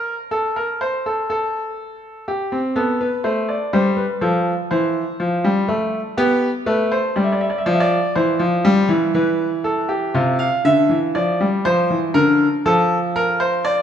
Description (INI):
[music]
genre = classical, baroque-style two-part invention for grand piano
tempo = 61 BPM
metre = 4/4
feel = straight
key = F major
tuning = A4 = 439 Hz
[part]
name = bright concert grand piano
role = solo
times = 0.0-13.8 s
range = C3 to F5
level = -17 LUFS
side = equal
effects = none
[sound]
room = moderate scoring stage reverb, RT60 2.2 s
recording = none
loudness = -16 LUFS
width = side -9 dB against mid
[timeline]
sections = 0.0-13.8 A section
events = none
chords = 0.0 N.C.; 2.3 C5; 4.2 Fmaj9/E; 6.2 G7; 8.2 C/E; 10.1 F5/C; 12.1 Dm7